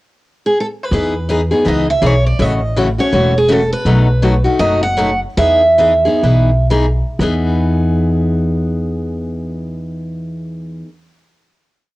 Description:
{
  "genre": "acoustic string swing (jazz manouche)",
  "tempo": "114-164 BPM",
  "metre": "4/4",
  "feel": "swing 61% on 8ths",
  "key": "E major",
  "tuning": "A4 = 441 Hz",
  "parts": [
    { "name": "picked steel-string acoustic guitar", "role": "melody", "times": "0.5-6.7 s", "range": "G#4 to F#5", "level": "-15 LUFS", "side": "right 1 dB", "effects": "cassette tape, plate reverb" },
    { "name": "picked steel-string acoustic guitar", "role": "accompaniment", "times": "0.9-10.9 s", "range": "B2 to G#4", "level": "-17 LUFS", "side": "left 2 dB", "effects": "cassette tape, plate reverb" },
    { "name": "upright bass", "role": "bass", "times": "0.9-10.8 s", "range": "E1 to E2", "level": "-16 LUFS", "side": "equal", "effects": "none" }
  ],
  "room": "wet booth ambience, RT60 0.2 s",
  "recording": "home recording on cassette",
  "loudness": "-12 LUFS",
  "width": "side -18 dB against mid",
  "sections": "0.0-0.9 pickup bar; 0.9-7.2 A section; 7.2-11.4 final chord",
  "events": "slowing down 3.8-7.2",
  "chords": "0.0 N.C.; 0.9 Emaj7; 2.4 A6; 3.8 B7; 5.4 Emaj7"
}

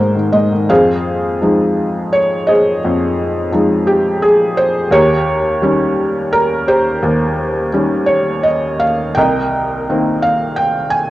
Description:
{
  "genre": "classical, lyrical solo piano",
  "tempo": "85 BPM",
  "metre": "3/4",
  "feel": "rubato",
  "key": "F minor",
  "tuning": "A4 = 440 Hz",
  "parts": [
    { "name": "felt-muted upright piano", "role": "solo", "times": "0.0-11.1 s", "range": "C2 to Ab5", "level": "-12 LUFS", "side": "equal", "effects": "none" }
  ],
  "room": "moderate spring reverb, RT60 2.1 s",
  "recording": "worn, warbling old tape, cassette tape, warbly pitch drift",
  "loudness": "-12 LUFS",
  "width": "side -16 dB against mid",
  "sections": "0.7-11.1 A section",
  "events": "none",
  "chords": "0.0 Ab; 0.7 Fm7; 4.9 Eb7; 9.2 Cm7"
}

